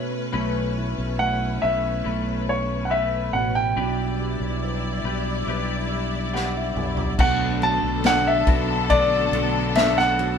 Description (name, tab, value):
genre	pop ballad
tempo	70 BPM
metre	4/4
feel	straight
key	B minor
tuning	A4 = 440 Hz
part	clear baby grand piano	melody	0.0-10.4 s	C#5 to A5	-22 LUFS	left 1 dB	none
part	dark upright piano	accompaniment	0.0-10.4 s	B2 to F#5	-30 LUFS	right 5 dB	none
part	clear symphonic string section	sustained chords	0.0-10.4 s	D3 to D5	-28 LUFS	left 3 dB	none
part	twelve-string electric guitar	arpeggios	0.3-10.4 s	B2 to B4	-32 LUFS	left 6 dB	spring reverb
part	fretless electric bass	bass	0.3-10.4 s	A1 to B1	-27 LUFS	equal	none
part	unplugged drum kit	drums	6.4-10.4 s	crash cymbal, kick drum, ride cymbal, snare drum, toms	-25 LUFS	equal	none
room	moderate small room reverb, RT60 0.5 s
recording	band playing live in one room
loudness	-20 LUFS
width	side -7 dB against mid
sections	0.0-7.2 A section; 7.2-10.4 B section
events	upright piano fill 5.9-7.2; drum fill 6.3-7.2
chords	0.0 Aadd9/B; 3.8 Em7/B; 7.2 Bm7